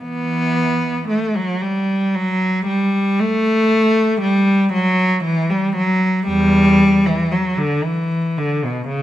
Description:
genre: classical, baroque-style suite movement for unaccompanied cello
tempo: 58 BPM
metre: 3/4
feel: rubato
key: E minor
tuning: A4 = 441 Hz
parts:
  - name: rich cello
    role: solo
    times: 0.0-9.0 s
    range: E2 to B3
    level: -15 LUFS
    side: equal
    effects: none
room: wet recital hall reverb, RT60 1.5 s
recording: close, detailed microphones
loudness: -15 LUFS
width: side -13 dB against mid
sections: 0.0-9.0 A section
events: none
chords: none

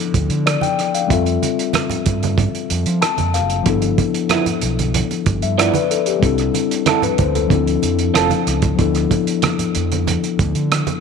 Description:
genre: lush 1970s-style soul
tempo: 94 BPM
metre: 4/4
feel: straight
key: D dorian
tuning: A4 = 440 Hz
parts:
  - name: mellow tine electric piano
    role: accompaniment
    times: 0.0-11.0 s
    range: F3 to A5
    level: -19 LUFS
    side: left 10 dB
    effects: medium stereo tremolo
  - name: overdriven fingered electric bass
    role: bass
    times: 0.1-10.8 s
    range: F1 to F3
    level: -20 LUFS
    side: right 2 dB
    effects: none
  - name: cloth-damped thuddy drum kit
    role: drums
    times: 0.1-11.0 s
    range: hi-hat, kick drum, rim click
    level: -20 LUFS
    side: right 5 dB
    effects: none
  - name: congas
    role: percussion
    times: 0.6-11.0 s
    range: none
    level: -26 LUFS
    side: right 10 dB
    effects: none
  - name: electric guitar through a small old amp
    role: riff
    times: 4.3-8.3 s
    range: F3 to A4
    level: -22 LUFS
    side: right 14 dB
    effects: spring reverb
room: light reverb, studio ambience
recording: 1960s-style stereo with parts hard left and right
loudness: -15 LUFS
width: side -6 dB against mid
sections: 0.0-8.8 A section; 8.8-11.0 A section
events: tine electric piano fill 2.7-3.7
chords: 0.0 Dm69; 1.1 Fmaj9; 3.7 G13; 6.2 C69; 7.5 Dm7; 8.8 Dm69

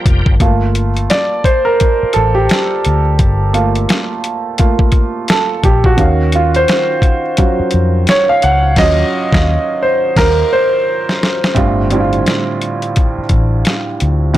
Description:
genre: R&B, neo-soul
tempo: 86 BPM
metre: 4/4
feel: swing 60% on 16ths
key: unclear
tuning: A4 = 440 Hz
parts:
  - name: warm concert grand piano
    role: accompaniment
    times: 0.0-14.4 s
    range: A2 to Gb5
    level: -14 LUFS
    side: right 2 dB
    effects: none
  - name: vintage muted fingered electric bass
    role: bass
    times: 0.1-14.3 s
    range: F1 to F2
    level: -14 LUFS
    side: left 1 dB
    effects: tube saturation
  - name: boom bap sampler-style drum kit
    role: drums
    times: 0.1-14.4 s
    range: crash cymbal, hi-hat, kick drum, snare drum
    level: -14 LUFS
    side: left 1 dB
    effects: none
room: light reverb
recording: blown-out, overdriven recording, overdrive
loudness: -11 LUFS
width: side -14 dB against mid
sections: 0.4-11.6 A section; 11.6-14.4 B section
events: grand piano solo 0.4-11.6; band accent 8.8-11.6; drum fill 10.9-11.6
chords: 0.4 Gm9; 6.0 Ebm9; 11.6 G7sus2

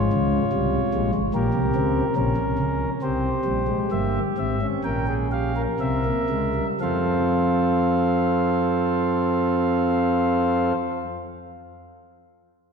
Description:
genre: classical, baroque-style 4-part fugue for pipe organ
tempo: 57-76 BPM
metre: 4/4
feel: straight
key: unclear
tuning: A4 = 441 Hz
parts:
  - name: chamber organ, principal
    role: solo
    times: 0.0-10.8 s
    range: G1 to G5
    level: -20 LUFS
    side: equal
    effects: none
room: wet church reverb, RT60 2.6 s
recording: none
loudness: -20 LUFS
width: side -5 dB against mid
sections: 0.0-6.8 A section; 6.8-10.9 B section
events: slowing down 0.0-6.8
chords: 0.0 Db; 1.3 Gdim/Bb; 3.0 C7; 6.8 F

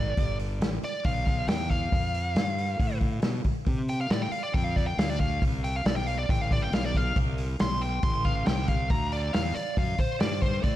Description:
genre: blues rock power trio and southern rock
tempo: 138 BPM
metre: 4/4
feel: straight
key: unclear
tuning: A4 = 440 Hz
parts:
  - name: smooth overdriven lead guitar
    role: melody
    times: 0.0-10.8 s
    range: C5 to C6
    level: -31 LUFS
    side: equal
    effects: slapback echo
  - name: fuzz fingered electric bass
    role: bass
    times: 0.0-10.8 s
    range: G1 to C3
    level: -30 LUFS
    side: equal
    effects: overdrive
  - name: vintage drum kit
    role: drums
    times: 0.2-10.7 s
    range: hi-hat, kick drum, snare drum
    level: -27 LUFS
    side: equal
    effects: none
room: light reverb, studio reverb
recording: none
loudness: -25 LUFS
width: side -13 dB against mid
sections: 0.0-10.8 A section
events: lead electric guitar solo 0.0-10.8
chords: 0.0 G; 1.9 F; 8.9 D

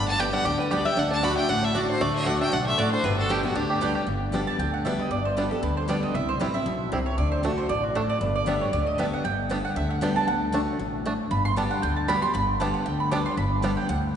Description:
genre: bluegrass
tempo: 232 BPM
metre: 4/4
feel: swing 55% on 8ths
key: G major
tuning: A4 = 441 Hz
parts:
  - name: clear fiddle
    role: melody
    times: 0.0-4.0 s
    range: F#4 to B5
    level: -27 LUFS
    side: equal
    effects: none
  - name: lap resonator guitar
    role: second line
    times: 0.0-4.0 s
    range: D4 to F#5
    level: -32 LUFS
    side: left 2 dB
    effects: none
  - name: picked steel-string acoustic guitar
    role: accompaniment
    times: 0.0-14.1 s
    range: G2 to G4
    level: -29 LUFS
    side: left 2 dB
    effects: none
  - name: bluegrass banjo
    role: arpeggios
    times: 0.0-13.7 s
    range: D3 to G4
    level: -30 LUFS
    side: right 2 dB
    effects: none
  - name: upright bass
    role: bass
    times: 0.0-14.2 s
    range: G1 to D2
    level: -29 LUFS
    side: equal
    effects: none
  - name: mandolin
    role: stabs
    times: 0.2-14.0 s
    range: A3 to D6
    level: -29 LUFS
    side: right 3 dB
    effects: none
room: wet church reverb, RT60 3.6 s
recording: recorded in a church or concert hall, nothing above 10.3 kHz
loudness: -22 LUFS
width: side -8 dB against mid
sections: 0.0-4.1 A section; 4.1-12.3 B section; 12.3-14.2 B section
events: mandolin solo 4.1-14.2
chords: 0.0 G; 1.0 D; 3.0 G; 6.1 C; 7.2 D; 8.2 G; 10.3 D; 11.3 G

